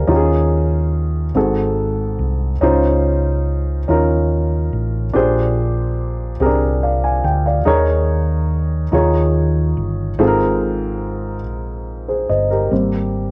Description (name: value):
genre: slow gospel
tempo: 48 BPM (dotted quarters)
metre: 6/8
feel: straight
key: Ab major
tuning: A4 = 440 Hz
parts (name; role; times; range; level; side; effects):
- dark baby grand piano; accompaniment; 0.0-13.3 s; Ab2 to Ab5; -20 LUFS; equal; cassette tape
- hollow-body short-scale fingered electric bass; bass; 0.0-13.3 s; G1 to Eb2; -21 LUFS; equal; none
room: light reverb, small room ambience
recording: home recording on cassette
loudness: -18 LUFS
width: mono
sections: 0.0-12.7 A section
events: none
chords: 0.1 Eb9sus4; 1.4 Ab7b9; 2.6 Dbmaj9; 5.1 Bb13; 7.7 Eb7sus4; 8.9 Eb9sus4; 10.2 Ab69; 12.7 Abmaj7